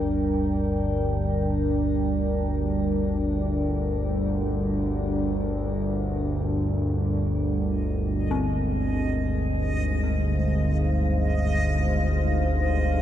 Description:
dark ambient drone; free time; G phrygian; A4 = 440 Hz
dark analog pad; sustained chords; 0.0-13.0 s; G3 to G5; -28 LUFS; right 1 dB; chorus, shimmer reverb
analog drone; drone; 0.0-13.0 s; G1 to D2; -24 LUFS; equal; chorus
backwards swelling texture; texture; 8.2-13.0 s; Eb5; -33 LUFS; right 2 dB; built-in reverb, shimmer reverb
dark detuned synth bell; arpeggios; 8.3-13.0 s; C4; -34 LUFS; left 1 dB; chorus, tape echo, shimmer reverb
wet cathedral reverb, RT60 6.1 s; -23 LUFS; side -11 dB against mid
0.0-13.0 A section
0.0 Gm; 7.7 Fm7
free time

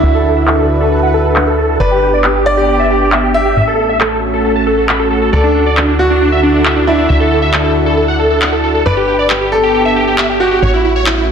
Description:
uplifting trance; 136 BPM; 4/4; straight; D major; A4 = 440 Hz
supersaw chords; melody; 0.0-11.3 s; D4 to B5; -15 LUFS; equal; phaser, cassette tape, low-pass filter, ping-pong delay
clear baby grand piano; second line; 0.0-11.3 s; E4 to E5; -16 LUFS; equal; ping-pong delay
lush unison pad; sustained chords; 0.0-11.3 s; D3 to B4; -17 LUFS; right 1 dB; chorus
plucky analog bass; bass; 0.0-11.3 s; G1 to D2; -17 LUFS; equal
electronic handclaps; drums; 0.5-11.2 s; -18 LUFS; equal; overdrive, low-pass filter on hats, studio reverb, low-pass filter on perc, low-pass filter on snare
moderate lush hall reverb, RT60 2.2 s; dense, heavily limited modern master; -10 LUFS; side -7 dB against mid
0.0-11.3 A section
filter sweep on drum 0.0-11.3; filter sweep on supersaw synth 0.0-11.3
0.0 Dadd9; 1.8 G; 3.6 A6; 5.3 Dadd9; 8.9 G; 10.6 A6
| 0.04 0.48 0.92 1.36 | 1.80 2.24 2.68 3.12 | 3.56 4.00 4.45 4.89 | 5.33 5.77 6.21 6.65 | 7.09 7.54 7.98 8.42 | 8.86 9.30 9.74 10.18 | 10.62 11.06

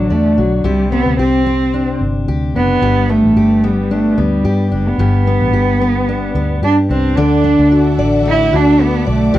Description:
acoustic pop; 110 BPM; 4/4; swing 55% on 16ths; G major; A4 = 440 Hz
dark cello; melody; 0.0-9.4 s; F#3 to E4; -14 LUFS; right 2 dB
fingerpicked steel-string acoustic guitar; accompaniment; 0.0-9.4 s; G2 to D5; -17 LUFS; left 4 dB
vintage muted fingered electric bass; bass; 0.0-9.4 s; F#1 to G2; -18 LUFS; equal
warm studio string section; sustained chords; 7.2-9.4 s; A4 to D6; -29 LUFS; equal
small room ambience; dry, close 1970s-style studio recording; -11 LUFS; side -14 dB against mid
0.0-7.2 A section; 7.2-9.4 B section
0.0 Dadd9; 0.7 Csus2; 2.8 G; 7.2 Dadd9
0.11 | 0.65 1.19 1.74 2.28 | 2.82 3.37 3.91 4.45 | 5.00 5.54 6.08 6.63 | 7.17 7.71 8.26 8.80 | 9.35

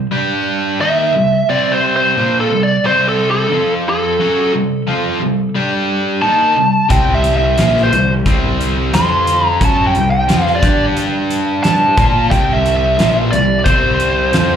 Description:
classic rock; 89 BPM; 4/4; straight; C mixolydian; A4 = 438 Hz
cranked stack guitar; riff; 0.0-14.6 s; Bb2 to Bb4; -16 LUFS; equal; overdrive, slapback echo
biting lead guitar; melody; 0.8-14.6 s; A4 to C6; -15 LUFS; right 1 dB; overdrive, slapback echo, analog delay
fuzz picked electric bass; bass; 6.9-14.6 s; Bb1 to Bb2; -18 LUFS; left 1 dB; overdrive
huge arena drum kit; drums; 6.9-14.5 s; hi-hat, kick drum, snare drum; -18 LUFS; equal
light reverb; live gig heard through the venue's PA, club reverb; -12 LUFS; side -8 dB against mid
0.0-14.6 A section
0.1 G5; 0.8 C; 3.5 F5; 4.2 C5; 5.6 G5; 6.2 C5; 8.9 F5; 9.6 C5; 10.6 G5; 12.0 C5
0.13 0.81 | 1.49 2.17 2.85 3.52 | 4.20 4.88 5.55 6.23 | 6.91 7.58 8.26 8.93 | 9.61 10.28 10.96 11.63 | 12.31 12.98 13.66 14.34

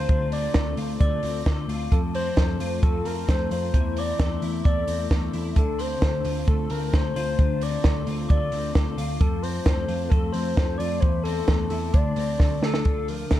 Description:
jangly indie pop; 132 BPM; 4/4; straight; D minor; A4 = 440 Hz
warbly nostalgic lead; melody; 0.0-13.4 s; A4 to D5; -30 LUFS; left 1 dB; chorus
glockenspiel with soft plastic mallets; second line; 0.0-12.6 s; A5 to D6; -38 LUFS; left 3 dB
twelve-string electric guitar; arpeggios; 0.0-13.4 s; D3 to F4; -31 LUFS; left 4 dB; ensemble chorus
vintage muted picked electric bass; bass; 0.0-13.4 s; D2 to F2; -29 LUFS; equal
compact cocktail drum kit; drums; 0.1-13.4 s; hi-hat, kick drum, snare drum; -23 LUFS; equal
light reverb; dark, warm production; -21 LUFS; side -13 dB against mid
0.0-12.9 A section
drum fill 12.4-12.9
0.0 Dm7; 1.9 F; 3.7 Am/E; 5.6 Dm7; 9.2 F; 11.0 Am/E; 11.9 Dm7; 12.9 Dmadd9
| 0.09 0.55 1.00 1.46 | 1.92 2.37 2.83 3.28 | 3.74 4.19 4.65 5.11 | 5.56 6.02 6.47 6.93 | 7.38 7.84 8.30 8.75 | 9.21 9.66 10.12 10.58 | 11.03 11.49 11.95 12.40 | 12.86 13.32

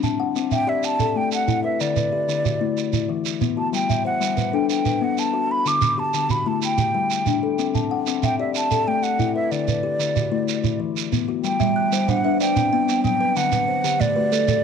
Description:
southern african traditional, mbira-style interlocking cycle; 125 BPM (dotted quarters); 12/8; straight; G major; A4 = 441 Hz
kalimba; arpeggios; 0.0-14.6 s; D3 to A5; -23 LUFS; left 10 dB
shekere; percussion; 0.0-14.6 s; -26 LUFS; right 8 dB
breathy mellow silver concert flute; melody; 0.5-14.6 s; D5 to D6; -23 LUFS; right 1 dB; tape echo
buzzing kalimba; arpeggios; 11.6-14.6 s; D3 to F#6; -25 LUFS; right 17 dB
moderate spring reverb, RT60 1.3 s, small room reverb; 1960s-style stereo with parts hard left and right; -19 LUFS; side -6 dB against mid
0.0-11.4 A section; 11.4-14.6 A section
0.0 C; 0.8 A5; 1.8 D; 2.8 E5; 3.7 G; 4.7 B5; 5.7 D; 6.6 G5; 7.6 C; 8.6 A5; 9.5 D; 10.5 E5; 11.4 G; 12.4 Bm; 13.4 D
0.36 0.84 1.32 | 1.80 2.29 2.77 3.25 | 3.73 4.21 4.70 5.18 | 5.66 6.14 6.62 7.11 | 7.59 8.07 8.55 9.03 | 9.52 10.00 10.48 10.96 | 11.44 11.92 12.40 12.88 | 13.36 13.84 14.32

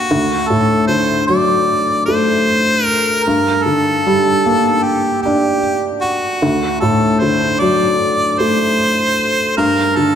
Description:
pop; 76 BPM; 4/4; straight; A4 = 440 Hz
warm harmonica; melody; 0.0-10.2 s; F#4 to D5; -15 LUFS; equal
felt-muted upright piano; accompaniment; 0.0-10.2 s; D2 to D4; -15 LUFS; equal
wet concert hall reverb, RT60 1.9 s; -12 LUFS; side -8 dB against mid
0.0-10.2 A section
0.1 D; 3.3 Gm; 6.4 D; 9.6 Gm
| 0.10 0.90 1.68 2.47 | 3.26 4.05 4.84 5.63 | 6.42 7.21 8.00 8.79 | 9.58

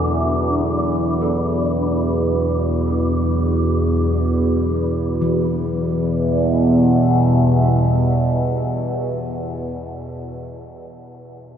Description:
dark ambient drone; free time; E minor; A4 = 440 Hz
deep dark ambient pad; sustained chords; 0.0-9.7 s; B3 to E5; -21 LUFS; right 1 dB; chorus, built-in reverb
gamelan-type bossed gongs; arpeggios; 0.0-9.2 s; D3 to A4; -30 LUFS; left 5 dB; tape echo
overtone-sweeping drone; drone; 0.0-9.2 s; E2 to B2; -19 LUFS; equal; chorus, built-in reverb, phaser
wind-like tuned noise texture; texture; 0.0-5.3 s; B3 to D4; -27 LUFS; left 1 dB; built-in reverb, ensemble chorus
wet huge ambient reverb, RT60 9.0 s; dreamy mix soaked in reverb; -16 LUFS; side -8 dB against mid
0.0-5.2 A section; 5.2-9.6 B section
0.0 Esus2; 5.2 Em
free time

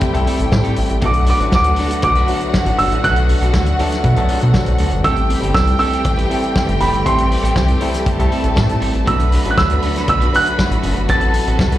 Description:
disco; 119 BPM; 4/4; straight; A dorian; A4 = 439 Hz
warm baby grand piano; melody; 0.0-11.8 s; B5 to A6; -19 LUFS; right 2 dB; slapback echo, analog delay
warm studio violin section; second line; 0.0-11.8 s; F#4 to B5; -24 LUFS; right 1 dB; slapback echo
barky tine electric piano; accompaniment; 0.0-11.8 s; F#3 to F#5; -23 LUFS; left 4 dB; overdrive, slapback echo
electric guitar at the edge of break-up; accompaniment; 0.0-11.8 s; C4 to B4; -27 LUFS; right 5 dB
clear studio string section; sustained chords; 0.0-11.8 s; C3 to B4; -25 LUFS; equal
warm soul drum kit; drums; 0.0-11.8 s; hi-hat, kick drum, snare drum; -20 LUFS; equal
rubbery square bass; bass; 0.1-11.8 s; F#1 to B2; -16 LUFS; equal
small room ambience; live gig heard through the venue's PA, club reverb; -13 LUFS; side -14 dB against mid
0.0-11.8 A section
tine electric piano fill 0.3-1.0, 3.5-5.0
0.0 Am7; 1.0 Bm7; 5.0 Am7; 9.1 Bm7; 11.1 Am69
0.02 0.52 | 1.03 1.53 2.03 2.54 | 3.04 3.54 4.04 4.55 | 5.05 5.55 6.06 6.56 | 7.06 7.57 8.07 8.57 | 9.08 9.58 10.08 10.59 | 11.09 11.59

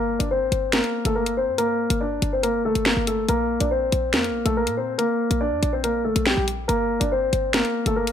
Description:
hip hop, drill; 141 BPM; 4/4; half-time; G minor; A4 = 440 Hz
warm concert grand piano; melody; 0.0-8.1 s; G3 to D5; -22 LUFS; left 1 dB; low-pass filter
short 808-style bass; bass; 0.0-8.1 s; G1 to Bb2; -27 LUFS; equal
drill drum kit; drums; 0.2-8.1 s; finger snaps, hi-hat, snare drum; -23 LUFS; equal
light reverb, small room ambience; -20 LUFS; side -8 dB against mid
0.0-8.1 A section
0.0 Gm; 3.3 Bb; 6.7 Gm
0.31 0.73 1.16 | 1.58 2.01 2.44 2.86 | 3.29 3.71 4.14 4.56 | 4.99 5.41 5.84 6.26 | 6.69 7.12 7.54 7.97

